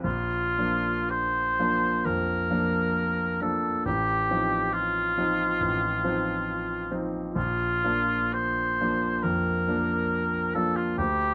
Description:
classical, romantic duo for oboe and grand piano; 54-70 BPM; 4/4; rubato; Bb major; A4 = 440 Hz
mellow oboe; melody; 0.0-11.3 s; F4 to C5; -28 LUFS; equal
clear concert grand piano; accompaniment; 0.0-11.3 s; A1 to Eb4; -30 LUFS; equal
light reverb; close, detailed microphones; -26 LUFS; mono
0.0-11.3 A section
0.0 Bb; 3.9 F7/A; 7.4 Bb
| 0.05 1.11 2.05 2.96 | 3.86 4.74 5.60 6.48 | 7.36 8.34 9.24 10.11 | 10.99

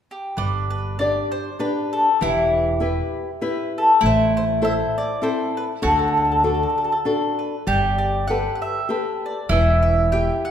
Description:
italian folk, Italian serenade; 98 BPM; 3/4; swing 54% on 8ths; G major; A4 = 441 Hz
mandolin; melody; 0.1-10.5 s; G4 to G5; -23 LUFS; left 2 dB
mandolin; second line; 0.4-10.5 s; D4 to G4; -24 LUFS; right 1 dB
flamenco guitar; accompaniment; 0.4-10.5 s; D3 to D5; -24 LUFS; left 1 dB
upright bass; bass; 0.4-10.3 s; E1 to D2; -24 LUFS; equal
wet recital hall reverb, RT60 1.5 s; minimal, uncompressed stereo recording; -18 LUFS; side -9 dB against mid
0.4-10.5 A section
0.4 G; 2.2 Em; 4.0 Am; 5.8 D; 7.7 Gadd9; 9.5 Em
| 0.38 0.99 1.61 | 2.22 2.82 3.42 | 4.02 4.62 5.22 | 5.83 6.44 7.06 | 7.67 8.29 8.90 | 9.51 10.12

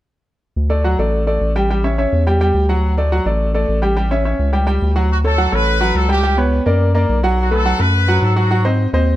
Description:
latin, salsa; 212 BPM; 4/4; straight; D major; A4 = 440 Hz
round analog bass; bass; 0.6-9.2 s; A1 to G#2; -16 LUFS; equal
bright upright piano; accompaniment; 0.7-9.2 s; F#3 to G5; -18 LUFS; equal
brilliant horn section; melody; 5.1-8.6 s; F#4 to B4; -20 LUFS; equal
light reverb; close, detailed microphones; -14 LUFS; side -14 dB against mid
0.6-5.1 A section; 5.1-9.2 B section
0.6 D; 1.7 A7; 2.8 D; 4.0 A7; 5.1 Dmaj7; 6.2 Gmaj7#11/C#; 6.8 F#aug; 7.4 B5; 8.5 G#7
| 0.56 0.85 1.13 1.41 | 1.70 1.98 2.27 2.55 | 2.83 3.12 3.40 3.69 | 3.97 4.25 4.54 4.82 | 5.10 5.39 5.67 5.95 | 6.24 6.52 6.80 7.09 | 7.37 7.65 7.93 8.22 | 8.50 8.78 9.07

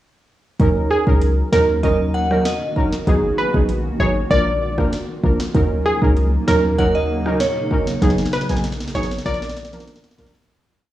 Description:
dancehall; 97 BPM; 4/4; straight; Eb minor; A4 = 438 Hz
synth brass stab; accompaniment; 0.6-10.3 s; F3 to Bb4; -20 LUFS; right 1 dB; chorus, cassette tape
granular cloud pad; sustained chords; 1.8-10.5 s; Db3 to Gb4; -29 LUFS; right 1 dB; built-in reverb, sidechain pumping, cassette tape
warm 808-style bass; bass; 0.6-10.3 s; Ab1 to Eb2; -20 LUFS; equal
afro-pop drum kit; drums; 0.6-10.6 s; hi-hat, kick drum, rim click, snare drum; -23 LUFS; equal
glassy wavetable pluck; melody; 0.9-9.7 s; Ab4 to D5; -21 LUFS; right 1 dB; chorus, cassette tape, analog delay
glassy synth bell; second line; 1.8-8.1 s; Db5 to Gb5; -24 LUFS; equal; chorus, phaser, cassette tape, analog delay
digital ambience; home recording on cassette, studio reverb; -16 LUFS; side -14 dB against mid
0.6-10.5 chorus
fade-out 8.0-10.5; drum fill 8.0-10.5
0.6 Ebm7; 3.1 Abm7; 4.3 Bb; 5.5 Ebm7; 8.0 Abm7; 9.3 Bb
| 0.60 1.22 1.83 2.45 | 3.07 3.69 4.31 4.93 | 5.55 6.16 6.78 7.40 | 8.02 8.64 9.26 9.88

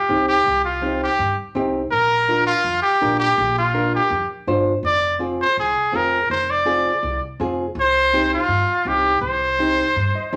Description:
latin, cumbia; 164 BPM; 4/4; straight; C minor; A4 = 445 Hz
clear trumpet; melody; 0.0-10.4 s; F4 to D5; -20 LUFS; equal
nylon-string guitar; accompaniment; 0.1-10.4 s; C4 to Eb5; -26 LUFS; equal
upright bass; bass; 0.1-10.4 s; F1 to G2; -31 LUFS; equal
wet large studio reverb, RT60 0.9 s; -19 LUFS; mono
0.0-10.4 A section
nylon-string guitar fill 10.0-10.4
0.0 Cm; 1.9 Bb; 4.8 Fm; 7.8 Cm
0.10 | 0.47 0.83 1.20 1.56 | 1.93 2.29 2.66 3.02 | 3.39 3.75 4.12 4.48 | 4.84 5.21 5.58 5.94 | 6.30 6.67 7.03 7.40 | 7.76 8.13 8.49 8.86 | 9.22 9.59 9.95 10.32

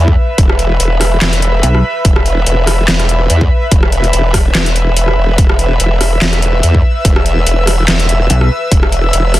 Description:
heavy wobble dubstep; 144 BPM; 4/4; swing 54% on 16ths, half-time; A4 = 443 Hz
formant-sweep wobble bass; bass; 0.0-9.4 s; E1 to E2; -12 LUFS; equal; chorus, overdrive
airy breathy pad; texture; 0.0-9.4 s; B4 to E6; -17 LUFS; equal; chorus, sidechain pumping
electronic kick drum; drums; 0.1-8.8 s; -11 LUFS; equal; overdrive
dubstep drum kit; drums; 0.4-9.4 s; handclaps, hi-hat, rim click, snare drum; -16 LUFS; equal; overdrive
pulsing pluck wobble bass; bass; 1.6-1.8, 8.3-8.5 s; B1; -9 LUFS; equal; chorus, overdrive
little or no reverb; dense, heavily limited modern master; -9 LUFS; side -15 dB against mid
0.0-9.4 A section
0.0 E5
| 0.38 0.80 1.22 1.63 | 2.05 2.47 2.88 3.30 | 3.72 4.13 4.55 4.97 | 5.38 5.80 6.22 6.63 | 7.05 7.47 7.88 8.30 | 8.72 9.13

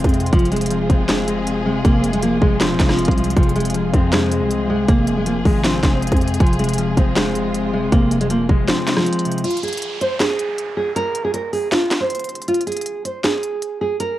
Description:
hip hop, trap; 158 BPM; 4/4; half-time; F minor; A4 = 439 Hz
nylon-string guitar; melody; 0.0-14.2 s; F3 to C5; -21 LUFS; right 2 dB; low-pass filter, cassette tape, tape echo
mellow electric guitar; accompaniment; 0.0-9.4 s; F2 to C4; -23 LUFS; left 6 dB; low-pass filter, cassette tape
warm symphonic string section; sustained chords; 0.0-9.4 s; C3 to Ab4; -27 LUFS; equal; cassette tape
growling 808-style bass; bass; 0.0-8.7 s; Eb1 to F2; -23 LUFS; equal
trap drum kit; drums; 0.0-14.1 s; handclaps, hi-hat, kick drum, rim click, snare drum; -18 LUFS; equal; cassette tape
downlifter; sound effects; 9.4-12.5 s; -33 LUFS; right 2 dB
digital ambience; home recording on cassette; -16 LUFS; side -14 dB against mid
0.0-9.4 A section; 9.4-14.2 B section
break 8.7-9.4, 9.4-14.2
0.0 Fm; 9.4 N.C.
| 0.33 0.71 1.09 1.47 | 1.85 2.23 2.61 2.99 | 3.37 3.75 4.13 4.51 | 4.88 5.26 5.64 6.03 | 6.40 6.78 7.16 7.54 | 7.92 8.30 8.68 9.06 | 9.44 9.82 10.20 10.58 | 10.96 11.34 11.72 12.10 | 12.48 12.86 13.24 13.62 | 14.00

